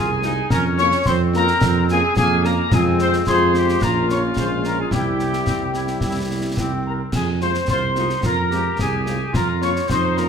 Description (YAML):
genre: military-style march for wind band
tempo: 109 BPM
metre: 2/4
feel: straight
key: F minor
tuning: A4 = 440 Hz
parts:
  - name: mellow trumpet section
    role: melody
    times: 0.0-10.3 s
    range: G4 to Db5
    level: -23 LUFS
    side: left 1 dB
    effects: none
  - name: piccolo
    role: second line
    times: 0.0-10.3 s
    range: G5 to Db6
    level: -26 LUFS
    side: left 2 dB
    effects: none
  - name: warm woodwind section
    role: second line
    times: 0.0-10.3 s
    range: Bb3 to Ab4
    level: -27 LUFS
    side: left 2 dB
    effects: none
  - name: mellow tuba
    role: bass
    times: 0.0-10.3 s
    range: Bb1 to F2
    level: -22 LUFS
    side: right 4 dB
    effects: none
  - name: mellow French horn section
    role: accompaniment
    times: 0.2-10.3 s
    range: G3 to F4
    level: -25 LUFS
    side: left 3 dB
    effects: none
  - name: concert snare drum, concert bass drum and clash cymbals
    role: drums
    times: 0.2-10.3 s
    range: none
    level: -25 LUFS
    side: equal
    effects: none
room: wet large studio reverb, RT60 1.4 s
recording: none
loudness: -17 LUFS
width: side -7 dB against mid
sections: 0.0-10.3 A section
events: none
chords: 0.0 Fm; 0.5 Bbm/F; 2.7 Fm; 3.8 Bbm; 4.9 C; 7.1 Fm; 9.3 Bbm/F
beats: | 0.51 1.06 | 1.61 2.16 | 2.72 3.27 | 3.82 4.37 | 4.92 5.47 | 6.03 6.58 | 7.13 7.68 | 8.24 8.79 | 9.34 9.89